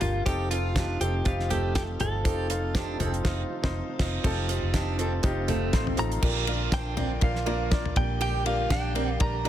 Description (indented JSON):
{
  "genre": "piano-driven pop",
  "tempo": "121 BPM",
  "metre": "4/4",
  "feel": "swing 56% on 16ths",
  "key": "unclear",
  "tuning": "A4 = 441 Hz",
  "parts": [
    { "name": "direct-recorded clean electric guitar", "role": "melody", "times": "0.0-9.5 s", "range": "F4 to Bb5", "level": "-32 LUFS", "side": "equal", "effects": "lush chorus" },
    { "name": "warm baby grand piano", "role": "accompaniment", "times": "0.0-9.5 s", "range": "G2 to D5", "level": "-32 LUFS", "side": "equal", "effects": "none" },
    { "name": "tonewheel organ", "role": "sustained chords", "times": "0.0-9.5 s", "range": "Bb2 to G4", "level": "-41 LUFS", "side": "left 1 dB", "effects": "none" },
    { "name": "vintage muted fingered electric bass", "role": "bass", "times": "0.0-9.5 s", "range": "F1 to Bb1", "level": "-30 LUFS", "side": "equal", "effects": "none" },
    { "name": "damped 70s drum kit", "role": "drums", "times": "0.0-9.5 s", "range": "crash cymbal, hi-hat, kick drum, ride cymbal, snare drum, toms", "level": "-29 LUFS", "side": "equal", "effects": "none" },
    { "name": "picked steel-string acoustic guitar", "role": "riff", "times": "0.3-9.5 s", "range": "A3 to G4", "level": "-36 LUFS", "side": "right 9 dB", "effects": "none" },
    { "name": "swell", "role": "sound effects", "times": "5.1-6.2 s", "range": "none", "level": "-38 LUFS", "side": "right 1 dB", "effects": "none" }
  ],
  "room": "light reverb, studio reverb",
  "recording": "dense, heavily limited modern master",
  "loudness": "-24 LUFS",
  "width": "side -11 dB against mid",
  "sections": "0.0-4.2 A section; 4.2-6.2 B section; 6.2-9.5 C section",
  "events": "band accent 3.2-4.2; swell 5.1-6.2",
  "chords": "0.3 F7; 6.2 Bb"
}